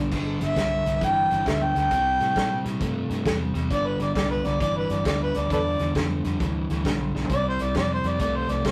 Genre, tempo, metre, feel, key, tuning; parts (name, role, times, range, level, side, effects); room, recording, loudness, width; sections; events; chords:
electric blues shuffle; 134 BPM; 4/4; swing 65% on 8ths; G mixolydian; A4 = 436 Hz
mellow harmonica; second line; 0.0-8.7 s; A4 to G5; -27 LUFS; equal
overdriven semi-hollow guitar; riff; 0.0-8.7 s; G2 to A3; -30 LUFS; equal
vintage muted fingered electric bass; bass; 0.0-8.7 s; G1 to Bb2; -33 LUFS; equal
natural country drum kit; drums; 0.1-8.7 s; crash cymbal, hi-hat, kick drum, snare drum, toms; -32 LUFS; equal
moderate studio reverb, RT60 0.6 s; rough rehearsal-room recording, warm saturation; -24 LUFS; mono
0.1-8.7 A section
harmonica solo 0.1-8.7; drum fill 7.1
0.1 G5; 1.9 C7; 3.7 G5; 7.3 C5